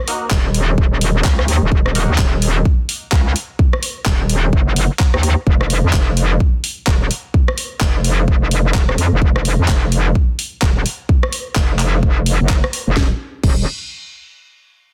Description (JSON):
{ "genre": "bass house", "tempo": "128 BPM", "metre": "4/4", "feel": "swing 60% on 16ths", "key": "Eb minor", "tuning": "A4 = 438 Hz", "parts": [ { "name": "band-passed chord stab", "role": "stabs", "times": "0.1-2.1 s", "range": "Bb3 to Gb4", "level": "-29 LUFS", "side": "equal", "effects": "phaser, ensemble chorus, sidechain pumping, delay" }, { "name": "garage drum kit", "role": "drums", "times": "0.1-13.5 s", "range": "crash cymbal, handclaps, hi-hat, rim click, snare drum", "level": "-24 LUFS", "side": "equal", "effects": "overdrive, studio reverb" }, { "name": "metallic wobble bass", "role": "bass", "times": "0.3-13.7 s", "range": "Eb1 to F2", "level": "-18 LUFS", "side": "equal", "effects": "chorus, overdrive, sidechain pumping" }, { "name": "electronic kick drum", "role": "drums", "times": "0.3-13.5 s", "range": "none", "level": "-17 LUFS", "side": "equal", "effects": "studio reverb" } ], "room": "digital ambience", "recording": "dense, heavily limited modern master", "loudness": "-16 LUFS", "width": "mono", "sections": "0.0-13.0 A section; 13.0-14.8 B section", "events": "none", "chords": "0.0 Ebm; 5.5 N.C.", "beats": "0.31 0.78 1.25 | 1.72 2.19 2.65 3.12 | 3.59 4.06 4.53 5.00 | 5.47 5.93 6.40 6.87 | 7.34 7.81 8.28 8.75 | 9.22 9.69 10.15 10.62 | 11.09 11.56 12.03 12.50 | 12.97 13.44" }